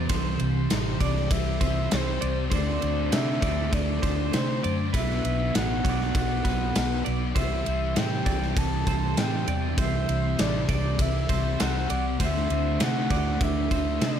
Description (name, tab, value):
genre	rock, shoegaze and dream pop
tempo	99 BPM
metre	4/4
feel	straight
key	unclear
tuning	A4 = 439 Hz
part	twelve-string electric guitar	arpeggios	0.0-14.2 s	B4 to D5	-37 LUFS	right 9 dB	lush chorus, tape echo
part	crunchy overdriven guitar	riff	0.0-14.2 s	B2 to F#4	-31 LUFS	right 9 dB	reverse reverb
part	thick fuzz guitar	riff	0.0-14.2 s	B2 to D4	-31 LUFS	left 10 dB	distortion, ensemble chorus
part	vintage muted fingered electric bass	bass	0.0-14.2 s	A1 to C3	-29 LUFS	equal	none
part	gated 80s drum kit	drums	0.1-14.2 s	kick drum, ride cymbal, snare drum	-28 LUFS	equal	none
part	breathy flute-like synth lead	melody	1.0-14.2 s	C5 to A5	-32 LUFS	equal	chorus, tape echo
room	light reverb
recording	none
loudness	-23 LUFS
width	side -9 dB against mid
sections	0.0-14.2 A section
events	none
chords	0.0 C; 2.5 D7; 4.9 Bm; 7.4 C; 12.2 D7